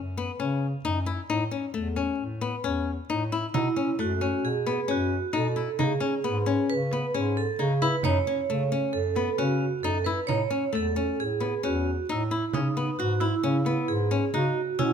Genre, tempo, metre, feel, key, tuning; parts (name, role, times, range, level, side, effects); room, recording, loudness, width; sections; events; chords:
contemporary instrumental, chamber music in an uneven meter; 134 BPM; 5/4; straight; A4 = 440 Hz
mellow bass clarinet; bass; 0.0-14.9 s; E2 to C#3; -30 LUFS; left 1 dB
flamenco guitar; arpeggios; 0.2-14.9 s; A3 to F#4; -28 LUFS; left 6 dB
vibraphone with medium hard mallets; second line; 3.5-14.9 s; D#4 to C#5; -28 LUFS; right 8 dB
frame drum; percussion; 3.5-14.9 s; -34 LUFS; right 5 dB
light reverb; close, detailed microphones; -24 LUFS; side -7 dB against mid
0.0-12.5 A section; 12.5-14.9 B section
0.0 F#5; 1.3 A; 3.5 Bsus2; 5.8 C#7(no3); 8.0 F#m; 10.3 Amaj7; 12.5 C#m7